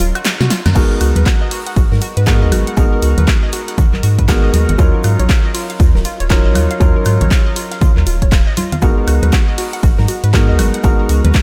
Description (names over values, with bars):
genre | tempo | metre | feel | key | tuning
deep house | 119 BPM | 4/4 | swing 61% on 16ths | G# minor | A4 = 437 Hz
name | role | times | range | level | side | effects
analog pluck | arpeggios | 0.0-11.4 s | E#4 to F#5 | -28 LUFS | equal | chorus, cassette tape, sidechain pumping, tape echo
felt-muted upright piano | stabs | 0.0-11.4 s | F#3 to A#4 | -23 LUFS | equal | sidechain pumping, tape echo
round analog bass | bass | 0.0-11.3 s | D#1 to B#2 | -16 LUFS | equal | tube saturation, sidechain pumping
oversized low-tuned drum kit | drums | 0.0-11.4 s | hi-hat, shaker, snare drum | -34 LUFS | equal | none
punchy analog drum machine | drums | 0.0-11.4 s | crash cymbal, handclaps, hi-hat, shaker, snare drum, woodblock | -24 LUFS | equal | none
congas | percussion | 0.0-11.3 s | none | -24 LUFS | equal | none
electronic kick drum | drums | 0.8-11.4 s | none | -15 LUFS | equal | none
room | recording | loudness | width
light reverb, small room ambience | none | -13 LUFS | mono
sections
0.8-11.4 A section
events
break 0.0-0.8; drum fill 0.3-0.8; band accent 0.6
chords
0.0 D#m9; 0.8 G#m9; 4.8 D#m9; 8.8 G#m9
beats
0.25 | 0.76 1.26 1.76 2.27 | 2.77 3.28 3.78 4.29 | 4.79 5.29 5.80 6.30 | 6.81 7.31 7.82 8.32 | 8.82 9.33 9.83 10.34 | 10.84 11.34